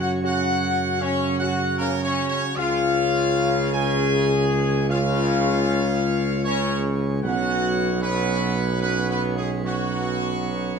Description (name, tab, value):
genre	classical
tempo	77 BPM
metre	3/4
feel	straight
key	Db mixolydian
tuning	A4 = 438 Hz
part	bright trumpet section	melody	0.0-10.8 s	Gb4 to Ab5	-27 LUFS	right 1 dB	none
part	mellow trombone section	sustained chords	0.0-10.8 s	Db3 to Db4	-30 LUFS	right 2 dB	none
part	pipe organ, principal chorus	sustained chords	0.0-10.8 s	Cb3 to Db5	-30 LUFS	right 1 dB	none
part	warm French horn section	sustained chords	0.0-10.8 s	Gb3 to Ab4	-26 LUFS	left 6 dB	none
part	mellow tuba	bass	0.0-10.8 s	Cb2 to Gb2	-25 LUFS	right 4 dB	none
room	moderate recital hall reverb, RT60 1.3 s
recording	none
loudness	-20 LUFS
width	side -6 dB against mid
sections	0.0-10.8 A section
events	none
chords	0.0 Gb5; 2.6 Db; 7.2 Cbsus2